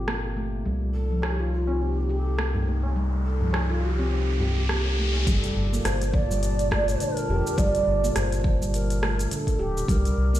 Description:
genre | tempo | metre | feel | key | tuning
organic downtempo | 104 BPM | 4/4 | swing 57% on 16ths | G minor | A4 = 440 Hz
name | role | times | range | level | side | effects
warbly tape-like pad | sustained chords | 0.0-10.4 s | Bb2 to A5 | -34 LUFS | left 1 dB | chorus, built-in reverb, sidechain pumping
handpan | arpeggios | 0.0-10.4 s | D3 to G4 | -31 LUFS | equal | vintage 12-bit sampler grit, low-pass filter, ping-pong delay
round analog bass | bass | 0.0-10.4 s | D1 to C2 | -25 LUFS | equal | none
organic electronic drum kit | drums | 0.1-10.4 s | hi-hat, rim click, shaker | -32 LUFS | equal | low-pass filter on snare, low-pass filter on hats, low-pass filter on perc, low-pass filter on room
riser | sound effects | 2.5-5.3 s | none | -35 LUFS | left 1 dB | none
mellow hollow low Native American-style wooden flute | melody | 0.9-10.4 s | F4 to D5 | -30 LUFS | right 2 dB | digital delay
tabla | percussion | 1.2-5.2 s | none | -33 LUFS | right 1 dB | none
electronic kick drum | drums | 5.3-10.0 s | none | -25 LUFS | equal | none
room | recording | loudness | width
light reverb, digital ambience | played on a big sound system in a bare room, stone room reverb | -22 LUFS | side -13 dB against mid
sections
0.0-5.3 A section; 5.3-10.4 B section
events
riser 2.5-5.3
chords
0.0 Gm9; 0.7 Cm7; 5.3 Gm9; 9.9 C7(no3)

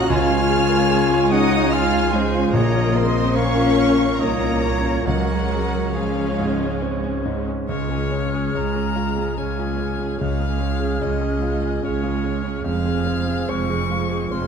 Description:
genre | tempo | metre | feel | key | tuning
cinematic, emotional film score for orchestra | 67-75 BPM | 3/4 | rubato | Db major from 7.7 s | A4 = 440 Hz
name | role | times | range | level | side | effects
clear studio violin section | melody | 0.0-14.5 s | Ab4 to F6 | -30 LUFS | left 2 dB | none
clear oboe | second line | 0.0-7.2 s | Db5 to F5 | -31 LUFS | right 2 dB | none
rich studio violin section | second line | 0.0-14.5 s | F4 to F5 | -34 LUFS | equal | none
silver concert flute | second line | 0.0-14.5 s | Ab4 to F6 | -29 LUFS | left 1 dB | none
clear concert grand piano | accompaniment | 0.0-14.5 s | Bb1 to Db5 | -25 LUFS | right 1 dB | none
rich studio viola section | accompaniment | 0.0-14.5 s | Db3 to Db4 | -28 LUFS | right 1 dB | none
dark French horn section | sustained chords | 0.0-14.5 s | F3 to Gb4 | -27 LUFS | left 6 dB | none
concert harp | arpeggios | 0.0-14.5 s | Bb2 to Bb5 | -28 LUFS | left 8 dB | none
rich studio double bass section | bass | 0.0-14.5 s | F1 to Db2 | -26 LUFS | right 4 dB | none
rich symphonic cello section | bass | 0.0-14.5 s | Db2 to F4 | -27 LUFS | right 3 dB | none
timpani | percussion | 2.5-3.7 s | Bb2 | -27 LUFS | equal | none
rich violin | melody | 7.7-14.5 s | Db5 to Db6 | -30 LUFS | left 8 dB | none
mellow clarinet | second line | 7.7-14.5 s | Ab4 | -32 LUFS | right 2 dB | none
room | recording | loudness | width
wet scoring stage reverb, RT60 1.8 s | dark, warm production | -18 LUFS | side -6 dB against mid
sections
0.0-7.7 A section; 7.7-14.5 B section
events
none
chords
0.1 Db; 2.5 Bbm; 5.1 Db; 12.7 Fm

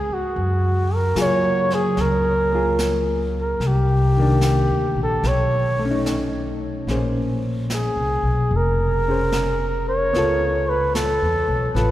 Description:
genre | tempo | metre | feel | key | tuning
jazz ballad | 73 BPM | 4/4 | swing 69% on 8ths | unclear | A4 = 440 Hz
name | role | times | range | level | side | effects
trumpet with bucket mute | melody | 0.0-11.9 s | Gb4 to Db5 | -22 LUFS | equal | none
hollow-body jazz guitar | accompaniment | 0.0-11.9 s | Eb3 to C5 | -25 LUFS | left 1 dB | none
upright bass | bass | 0.0-11.9 s | F1 to Db3 | -22 LUFS | equal | none
jazz brush drum kit | drums | 0.3-11.9 s | brushed snare drum, hi-hat, snare drum | -33 LUFS | right 1 dB | none
room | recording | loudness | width
wet cathedral reverb, RT60 4.5 s | recorded in a church or concert hall | -18 LUFS | side -14 dB against mid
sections
0.0-11.9 A section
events
none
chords
0.3 Gbmaj9; 3.6 Cm9; 5.2 Cb9; 6.9 Bbm9; 10.1 Db7alt

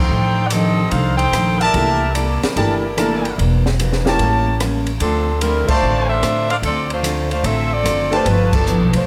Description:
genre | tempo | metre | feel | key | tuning
jazz, big band swing | 148 BPM | 4/4 | swing 67% on 8ths | unclear | A4 = 443 Hz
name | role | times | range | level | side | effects
clear saxophone section | melody | 0.0-9.1 s | F3 to G5 | -22 LUFS | equal | none
upright bass | bass | 0.0-9.1 s | E1 to A2 | -22 LUFS | equal | none
picked steel-string acoustic guitar | accompaniment | 0.1-9.0 s | F2 to A4 | -25 LUFS | equal | none
open jazz drum kit | drums | 0.5-9.0 s | crash cymbal, hi-hat, kick drum, ride cymbal, rim click, snare drum | -26 LUFS | equal | none
brilliant trumpet section | stabs | 1.6-8.6 s | E4 to A5 | -24 LUFS | equal | none
clear baby grand piano | accompaniment | 1.7-8.2 s | E3 to E5 | -25 LUFS | equal | none
room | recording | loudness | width
moderate recital hall reverb, RT60 1.4 s | none | -17 LUFS | mono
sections
0.0-9.1 A section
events
band accent 5.6, 8.5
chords
0.0 F13; 1.8 C13; 3.4 Em7b5; 4.2 A7b9; 5.0 Dm7; 8.3 G13

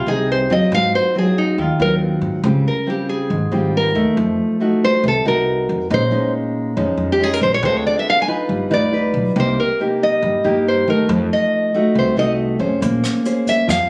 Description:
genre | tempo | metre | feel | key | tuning
bossa nova | 139 BPM | 4/4 | straight | F minor | A4 = 440 Hz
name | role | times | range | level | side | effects
nylon-string guitar | melody | 0.0-13.9 s | Eb4 to Ab5 | -20 LUFS | equal | none
nylon-string guitar | accompaniment | 0.0-13.9 s | Ab2 to C5 | -21 LUFS | equal | none
upright bass | bass | 0.0-13.9 s | G1 to Ab2 | -24 LUFS | equal | none
jazz brush drum kit | drums | 12.8-13.8 s | hi-hat, kick drum, rim click | -29 LUFS | equal | none
room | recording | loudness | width
light reverb | recorded on a phone in the room, studio ambience | -18 LUFS | mono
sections
0.0-13.9 A section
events
nylon-string guitar solo 0.0-13.9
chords
0.0 Fm7; 0.7 Ab6; 2.4 Dbmaj9#11; 4.2 F7b9; 5.9 Bbm11; 7.6 Dm7b5; 8.5 G7b13; 9.4 Cm7; 11.1 F7b9; 12.8 Bbm9

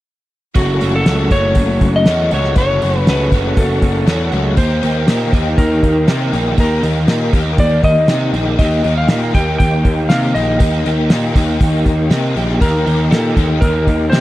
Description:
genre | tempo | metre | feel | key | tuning
psychedelic rock | 119 BPM | 4/4 | straight | unclear | A4 = 443 Hz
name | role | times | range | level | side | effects
overdriven electric guitar | riff | 0.5-14.2 s | F#2 to G4 | -18 LUFS | left 1 dB | rotary speaker
clean lap steel guitar | melody | 0.6-14.2 s | F#4 to G5 | -19 LUFS | equal | tape echo
combo organ | sustained chords | 0.6-14.2 s | A#3 to C#6 | -28 LUFS | right 4 dB | none
fuzz picked electric bass | bass | 0.6-14.2 s | F#1 to B#2 | -17 LUFS | equal | overdrive
cloth-damped thuddy drum kit | drums | 0.6-14.2 s | hi-hat, kick drum, snare drum | -13 LUFS | equal | none
room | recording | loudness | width
little or no reverb | dry, close 1970s-style studio recording | -12 LUFS | side -16 dB against mid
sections
0.6-14.2 A section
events
none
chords
0.6 F#m; 4.6 D#

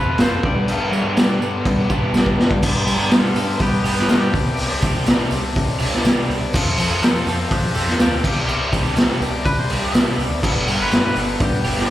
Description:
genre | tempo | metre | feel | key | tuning
indie rock | 123 BPM | 4/4 | straight | G mixolydian | A4 = 440 Hz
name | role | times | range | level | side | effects
twangy electric guitar | melody | 0.0-11.9 s | B3 to E5 | -27 LUFS | left 1 dB | spring reverb, slapback echo, tape echo
tine electric piano | second line | 0.0-0.9 s | G4 to B4 | -35 LUFS | right 3 dB | none
crunchy overdriven guitar | riff | 0.0-11.9 s | F3 to A4 | -28 LUFS | right 8 dB | wide subtle chorus, slapback echo, tape echo
raw garage guitar | riff | 0.0-11.9 s | G2 to A4 | -25 LUFS | left 6 dB | overdrive, slapback echo
growling picked electric bass | bass | 0.0-11.8 s | G1 to G3 | -23 LUFS | equal | overdrive
raw garage drum kit | drums | 0.2-11.8 s | crash cymbal, hi-hat, kick drum, snare drum | -18 LUFS | equal | none
tambourine | percussion | 0.2-11.8 s | none | -39 LUFS | right 4 dB | none
room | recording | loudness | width
small room ambience | live gig heard through the venue's PA, club reverb | -16 LUFS | side -13 dB against mid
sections
0.0-2.6 A section; 2.6-11.9 B section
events
drum fill 2.1-2.6; clean electric guitar solo 2.6-11.9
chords
0.4 G; 4.3 Csus2; 6.5 F; 8.2 Csus2; 10.4 G

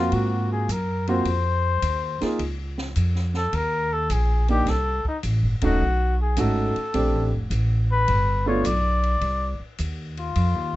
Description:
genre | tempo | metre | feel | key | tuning
jazz, small-group swing and bop | 106 BPM | 4/4 | swing 68% on 8ths | unclear | A4 = 440 Hz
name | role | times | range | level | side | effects
mellow trumpet | melody | 0.0-10.8 s | Eb4 to D5 | -25 LUFS | left 3 dB | none
warm baby grand piano | accompaniment | 0.0-8.6 s | A3 to Ab4 | -25 LUFS | right 2 dB | none
upright bass | bass | 0.0-10.8 s | Eb1 to Ab2 | -23 LUFS | equal | none
open jazz drum kit | drums | 0.1-10.5 s | hi-hat, kick drum, ride cymbal, snare drum | -36 LUFS | left 1 dB | none
room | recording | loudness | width
little or no reverb | rough home demo mix, nothing above 7.9 kHz | -21 LUFS | side -16 dB against mid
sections
0.0-10.8 A section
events
band accent 5.5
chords
0.1 Ab13; 2.4 Db69; 4.7 Cm; 5.8 B9; 6.9 Bbmaj13; 8.1 G7; 9.2 Cm

